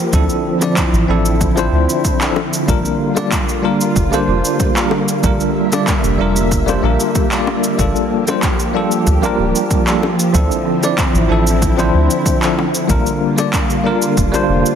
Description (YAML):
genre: sunset chillout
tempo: 94 BPM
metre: 4/4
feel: straight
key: Bb lydian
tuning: A4 = 438 Hz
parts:
  - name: soft string machine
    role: sustained chords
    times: 0.0-14.8 s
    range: D3 to E5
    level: -19 LUFS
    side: equal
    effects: ensemble chorus
  - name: barky tine electric piano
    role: accompaniment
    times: 0.1-14.8 s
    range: F3 to D5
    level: -18 LUFS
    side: moving between left 6 dB and right 5 dB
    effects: fast stereo tremolo, auto-pan, digital delay
  - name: round analog bass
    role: bass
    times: 0.1-14.6 s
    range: D1 to D2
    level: -16 LUFS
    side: equal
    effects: none
  - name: electronic cabasa and handclaps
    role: drums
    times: 0.1-14.8 s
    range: none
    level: -22 LUFS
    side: right 1 dB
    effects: overdrive, small room ambience
  - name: electronic kick drum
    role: drums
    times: 0.1-14.3 s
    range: none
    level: -20 LUFS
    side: equal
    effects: overdrive, small room ambience
  - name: bongos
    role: percussion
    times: 0.6-14.5 s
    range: none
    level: -24 LUFS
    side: left 6 dB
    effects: none
room: light reverb, digital ambience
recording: heavily compressed radio sound, multiband compression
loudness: -13 LUFS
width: side -8 dB against mid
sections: 0.0-14.8 A section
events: none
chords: 0.1 Dm9; 2.7 Bb6; 7.8 Gm9; 10.3 Dm9; 12.9 Bb6